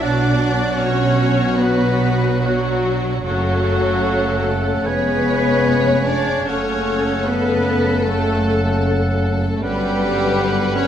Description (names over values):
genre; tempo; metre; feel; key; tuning
classical; 76 BPM; 4/4; rubato; B minor; A4 = 438 Hz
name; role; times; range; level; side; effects
warm symphonic violin section; melody; 0.0-10.9 s; F#4 to C#5; -26 LUFS; left 4 dB; none
mellow clarinet; second line; 0.0-10.9 s; F#4 to B4; -28 LUFS; left 2 dB; none
small flute group; second line; 0.0-10.9 s; F#4 to D5; -26 LUFS; equal; none
warm oboe; second line; 0.0-10.9 s; F#5 to G#5; -27 LUFS; right 2 dB; none
warm symphonic violin section; second line; 0.0-10.9 s; F#4 to D5; -29 LUFS; left 4 dB; none
rich studio viola section; accompaniment; 0.0-10.9 s; F#3 to D4; -22 LUFS; left 1 dB; none
warm bassoon; accompaniment; 0.0-10.9 s; C#3 to F#3; -27 LUFS; right 2 dB; none
mellow French horn section; sustained chords; 0.0-10.9 s; F#3 to D4; -25 LUFS; left 3 dB; none
dark symphonic double bass section; bass; 0.0-10.9 s; E#1 to B1; -25 LUFS; right 3 dB; none
warm symphonic cello section; bass; 0.0-10.9 s; E#2 to B2; -23 LUFS; right 1 dB; none
timpani; percussion; 3.3-4.4 s; F#2; -33 LUFS; equal; none
room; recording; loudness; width
moderate scoring stage reverb, RT60 1.5 s; none; -15 LUFS; side -9 dB against mid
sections
0.0-10.9 A section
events
none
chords
0.0 Bm; 3.3 F#m; 4.9 C#7/E#; 6.5 F#m; 9.6 Gmaj7